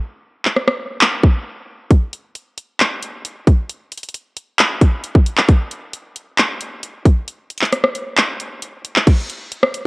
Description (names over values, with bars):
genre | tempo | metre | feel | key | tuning
hip hop | 134 BPM | 4/4 | half-time | none | none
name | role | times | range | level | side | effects
trap drum kit | drums | 0.5-9.8 s | crash cymbal, handclaps, hi-hat, kick drum, rim click | -14 LUFS | equal | overdrive, cassette tape
room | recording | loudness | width
light reverb, digital ambience | home recording on cassette | -14 LUFS | side -27 dB against mid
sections
0.0-9.1 A section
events
break 0.0-1.9; kick muted 7.3-9.1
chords
none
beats
| 0.12 0.56 1.01 1.46 | 1.91 2.35 2.80 3.25 | 3.70 4.14 4.59 5.04 | 5.49 5.94 6.38 6.83 | 7.28 7.73 8.17 8.62 | 9.07 9.52